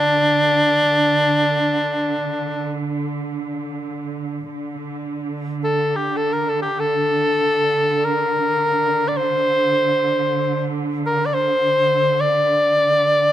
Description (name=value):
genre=caucasian folk, Caucasian lament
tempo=free time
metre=none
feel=none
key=unclear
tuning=A4 = 440 Hz
part: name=clear cor anglais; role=melody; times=0.0-13.3 s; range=D4 to D5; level=-17 LUFS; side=left 1 dB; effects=none
part: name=rich studio string section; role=drone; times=0.0-13.3 s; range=D3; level=-24 LUFS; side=right 3 dB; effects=none
room=light reverb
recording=close, detailed microphones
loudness=-17 LUFS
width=side -12 dB against mid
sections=0.0-4.5 A section; 4.5-13.3 A section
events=none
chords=none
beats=free time